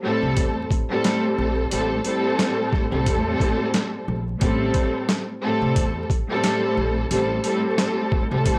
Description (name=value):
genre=hip hop, boom-bap hip-hop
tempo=89 BPM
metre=4/4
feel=swing 57% on 16ths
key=A minor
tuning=A4 = 441 Hz
part: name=warm studio string section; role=accompaniment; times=0.0-8.6 s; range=A2 to A4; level=-24 LUFS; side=equal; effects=cassette tape, high-pass filter, low-pass filter
part: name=upright bass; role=bass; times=0.2-8.6 s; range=A1 to E2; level=-29 LUFS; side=equal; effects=tube saturation
part: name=boom bap sampler-style drum kit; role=drums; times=0.4-8.6 s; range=handclaps, hi-hat, kick drum, snare drum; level=-25 LUFS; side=equal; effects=overdrive
room=small room ambience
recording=dry, gritty hardware recording, transformer saturation, vinyl crackle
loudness=-22 LUFS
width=mono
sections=0.0-8.6 A section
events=none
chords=0.0 Am7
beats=0.37 1.04 | 1.72 2.39 3.07 3.74 | 4.42 5.09 5.76 6.44 | 7.11 7.79 8.46